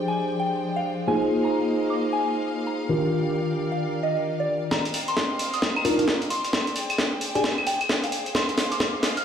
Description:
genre	UK garage, two-step garage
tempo	132 BPM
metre	4/4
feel	swing 62% on 16ths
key	F dorian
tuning	A4 = 443 Hz
part	warm symphonic violin section	sustained chords	0.0-9.2 s	Ab3 to G5	-34 LUFS	left 1 dB	sidechain pumping
part	mellow tine electric piano	stabs	0.0-7.4 s	Eb3 to D5	-24 LUFS	equal	medium stereo tremolo, low-pass filter, tape echo
part	soft synth bell	melody	0.1-9.2 s	D5 to F6	-29 LUFS	equal	chorus, phaser, dub echo
part	breakbeat sampler-style drum kit	drums	4.7-9.2 s	claves, hi-hat, snare drum	-24 LUFS	equal	high-pass filter on snare, high-pass filter on hats, high-pass filter on perc, high-pass filter on room
part	electronic kick drum	drums	4.7-8.9 s	none	-33 LUFS	equal	high-pass filter on kick
room	wet small room reverb, RT60 0.6 s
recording	played on a big sound system in a bare room, stone room reverb, vinyl crackle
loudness	-22 LUFS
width	side -8 dB against mid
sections	0.0-4.7 A section; 4.7-9.2 B section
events	filter sweep on tine electric piano 0.0-4.7; build-up 4.7-9.2; drum fill 4.7-9.2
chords	0.0 Fm69; 1.1 Bb9sus4; 2.9 Ebmaj7; 4.7 Cm11; 6.5 Fm69 (rootless); 8.3 Bb9sus4

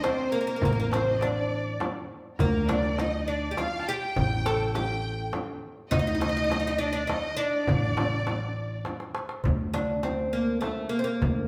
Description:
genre	Arabic maqam ensemble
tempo	102 BPM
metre	3/4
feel	straight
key	D maqam kurd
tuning	A4 = 438 Hz
part	oud	melody	0.0-11.5 s	A3 to A4	-32 LUFS	equal	none
part	dark violin	second line	0.0-8.9 s	Bb4 to A5	-37 LUFS	equal	none
part	rich studio violin section	second line	0.0-8.9 s	Bb4 to G5	-38 LUFS	equal	none
part	darbuka	percussion	0.0-11.4 s	none	-35 LUFS	equal	none
part	frame drum	percussion	0.0-11.4 s	none	-37 LUFS	equal	none
part	upright bass	bass	0.6-11.5 s	A1 to D2	-33 LUFS	equal	none
room	wet large studio reverb, RT60 1.4 s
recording	band playing live in one room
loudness	-28 LUFS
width	mono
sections	0.0-9.4 A section; 9.4-11.5 B section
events	drum fill 8.9-9.4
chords	none

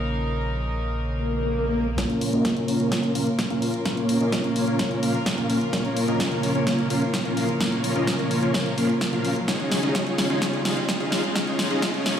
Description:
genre	EDM, festival progressive house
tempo	128 BPM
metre	4/4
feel	straight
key	Bb minor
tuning	A4 = 438 Hz
part	rich chamber string section	sustained chords	0.0-12.2 s	Db3 to Bb4	-31 LUFS	left 1 dB	sidechain pumping
part	saturated sub bass	bass	0.0-12.2 s	Bb1 to Db2	-32 LUFS	equal	sidechain pumping, high-pass filter
part	swell and riser	sound effects	1.2-12.2 s	none	-33 LUFS	left 1 dB	none
part	dense compressed supersaw	riff	2.0-12.2 s	Bb3 to F5	-23 LUFS	equal	sidechain pumping, low-pass filter, dub echo
part	electronic kick drum	drums	2.0-11.9 s	none	-33 LUFS	right 1 dB	high-pass filter on kick, studio reverb
part	house drum kit	drums	2.0-12.2 s	hi-hat, snare drum	-27 LUFS	equal	low-pass filter on snare, studio reverb, low-pass filter on hats
room	wet lush hall reverb, RT60 2.1 s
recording	played on a big sound system in a bare room, large studio reverb, high-pass filter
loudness	-21 LUFS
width	side -9 dB against mid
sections	0.0-2.0 A section; 2.0-12.2 B section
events	swell 1.2-2.0; build-up 2.0-12.2; drum fill 2.0-12.2; filter sweep on supersaw synth 2.0-12.2; filter sweep 2.0-12.2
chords	0.0 Bbm; 9.5 Dbadd9

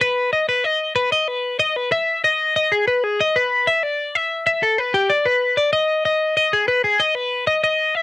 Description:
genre	rock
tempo	63 BPM (dotted quarters)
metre	6/8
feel	straight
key	E major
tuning	A4 = 440 Hz
part	twelve-string electric guitar	solo	0.0-8.0 s	G4 to E5	-16 LUFS	left 2 dB	cassette tape
room	light reverb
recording	home recording on cassette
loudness	-16 LUFS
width	side -19 dB against mid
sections	0.0-1.9 A section; 1.9-8.0 B section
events	none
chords	none

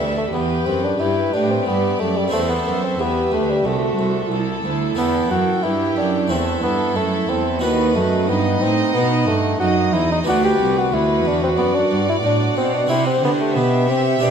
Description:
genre	classical, baroque-style concerto movement with solo episodes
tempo	91 BPM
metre	4/4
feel	straight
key	E minor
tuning	A4 = 439 Hz
part	dark chamber violin section	melody	0.0-14.3 s	B4 to A5	-33 LUFS	left 4 dB	none
part	warm bassoon	melody	0.0-14.3 s	G3 to G4	-21 LUFS	left 2 dB	none
part	rich chamber violin section	second line	0.0-14.3 s	G4 to E5	-27 LUFS	equal	none
part	dark chamber viola section	accompaniment	0.0-14.3 s	D#4 to A4	-23 LUFS	right 1 dB	none
part	harpsichord	accompaniment	0.0-14.3 s	C2 to G4	-26 LUFS	equal	none
part	rich chamber cello section	bass	0.0-14.3 s	C2 to D3	-22 LUFS	right 4 dB	none
room	wet recital hall reverb, RT60 1.5 s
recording	none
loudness	-16 LUFS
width	side -7 dB against mid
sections	0.0-14.3 A section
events	none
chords	0.0 Em; 2.3 Am; 5.0 Em; 6.3 Am13/E; 7.6 B/D#; 10.3 Bm; 12.9 C

